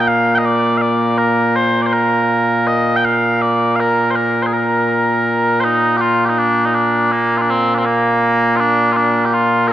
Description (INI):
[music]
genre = scottish traditional, Scottish pipe music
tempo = 81 BPM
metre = 2/4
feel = straight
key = Bb major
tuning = A4 = 441 Hz
[part]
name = mellow small bagpipes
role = solo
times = 0.0-9.7 s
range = Bb2 to G5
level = -13 LUFS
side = equal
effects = none
[sound]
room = moderate concert hall reverb, RT60 2.4 s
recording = dark, warm production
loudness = -13 LUFS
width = side -12 dB against mid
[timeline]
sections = 0.0-5.6 A section; 5.6-9.7 A section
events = none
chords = none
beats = 0.44 | 1.18 1.92 | 2.66 3.40 | 4.14 4.88 | 5.63 6.37 | 7.11 7.85 | 8.59 9.33